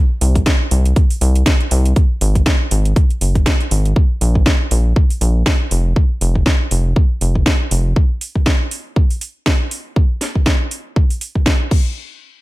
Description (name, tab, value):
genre	deep house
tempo	120 BPM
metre	4/4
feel	swing 57% on 16ths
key	unclear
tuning	A4 = 439 Hz
part	rubbery square bass	bass	0.2-7.9 s	F1 to C2	-14 LUFS	equal	sidechain pumping
part	house drum kit	drums	0.2-11.8 s	crash cymbal, hi-hat, snare drum	-20 LUFS	equal	none
part	electronic kick drum	drums	0.4-11.8 s	none	-14 LUFS	equal	none
room	little or no reverb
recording	none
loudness	-13 LUFS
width	side -19 dB against mid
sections	0.0-12.0 A section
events	none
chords	none